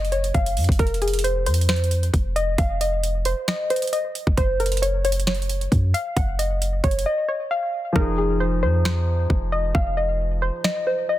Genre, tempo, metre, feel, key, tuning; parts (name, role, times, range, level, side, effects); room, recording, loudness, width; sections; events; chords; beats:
hip hop, trap; 134 BPM; 4/4; half-time; F phrygian; A4 = 435 Hz
soft round pluck; melody; 0.0-11.2 s; Ab4 to Gb5; -24 LUFS; left 1 dB; chorus, ping-pong delay
warm 808-style bass; bass; 0.0-10.5 s; F1 to Gb2; -23 LUFS; equal
trap drum kit; drums; 0.0-10.8 s; finger snaps, hi-hat, kick drum, snare drum; -24 LUFS; equal; soft clipping on snare
dark concert grand piano; accompaniment; 7.9-11.2 s; F3 to Ab4; -28 LUFS; left 2 dB
little or no reverb; dense, heavily limited modern master; -20 LUFS; side -14 dB against mid
0.0-11.2 A section
silent gap 7.1-8.0; hi-hats muted 8.0-11.2
0.0 Gb5; 0.8 F5; 4.4 Gb5; 8.0 Fm7
0.34 | 0.79 1.24 1.69 2.14 | 2.58 3.03 3.48 3.93 | 4.38 4.82 5.27 5.72 | 6.17 6.61 7.06 7.51 | 7.96 8.40 8.85 9.30 | 9.75 10.20 10.64 11.09